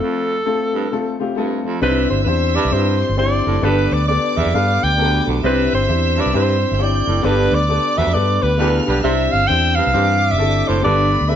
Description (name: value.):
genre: soul.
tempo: 133 BPM.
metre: 4/4.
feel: swing 63% on 8ths.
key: C major.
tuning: A4 = 441 Hz.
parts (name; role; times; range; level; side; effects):
breathy alto saxophone; melody; 0.0-11.4 s; A4 to G5; -19 LUFS; right 1 dB; none.
warm upright piano; accompaniment; 0.0-11.4 s; E3 to D5; -21 LUFS; left 6 dB; none.
mellow baritone saxophone; riff; 0.0-11.2 s; D2 to C3; -24 LUFS; right 6 dB; none.
warm studio violin section; second line; 1.8-11.4 s; B4 to G6; -26 LUFS; right 2 dB; none.
vintage muted fingered electric bass; bass; 1.8-11.4 s; F#1 to G2; -19 LUFS; right 1 dB; none.
mellow horn section; second line; 8.0-9.0 s; B3 to B4; -26 LUFS; right 1 dB; slapback echo.
room: moderate large studio reverb, RT60 1.0 s.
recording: nothing above 7.5 kHz.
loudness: -14 LUFS.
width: side -9 dB against mid.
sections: 0.0-1.8 A section; 1.8-11.4 B section.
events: break 0.0-1.8; band accent 7.2-9.0.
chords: 0.0 F; 1.8 Cadd9; 3.6 Gadd9; 5.4 Cadd9; 7.2 Gadd9; 9.0 Cadd9; 10.8 Gadd9.